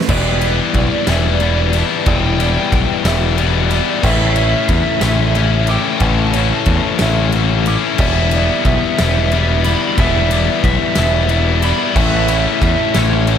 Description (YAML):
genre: post-rock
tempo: 61 BPM (dotted quarters)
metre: 6/8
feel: straight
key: E dorian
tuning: A4 = 440 Hz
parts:
  - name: pedal steel guitar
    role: sustained chords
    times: 0.0-13.4 s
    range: C#3 to B4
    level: -30 LUFS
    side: right 2 dB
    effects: none
  - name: felt-muted upright piano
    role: arpeggios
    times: 0.0-13.4 s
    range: B4 to D6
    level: -28 LUFS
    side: right 8 dB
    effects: tape echo
  - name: huge arena drum kit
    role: drums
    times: 0.0-13.4 s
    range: crash cymbal, kick drum, ride cymbal, snare drum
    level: -20 LUFS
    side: equal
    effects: none
  - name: overdriven slide guitar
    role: melody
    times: 0.1-13.4 s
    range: C#5 to B5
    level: -22 LUFS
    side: right 3 dB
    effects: analog chorus, tape echo
  - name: distorted electric guitar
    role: riff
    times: 0.1-13.4 s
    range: A2 to E4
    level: -17 LUFS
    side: left 9 dB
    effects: overdrive
  - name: growling picked electric bass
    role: bass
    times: 0.1-13.4 s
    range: E1 to E2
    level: -16 LUFS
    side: equal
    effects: overdrive
room: light reverb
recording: none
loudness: -12 LUFS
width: side -8 dB against mid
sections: 0.1-13.4 A section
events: none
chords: 0.1 Em7; 4.0 Aadd9; 8.0 Em7; 12.0 Aadd9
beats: | 0.10 1.09 | 2.08 3.06 | 4.05 5.04 | 6.02 7.01 | 8.00 8.99 | 9.98 10.97 | 11.96 12.95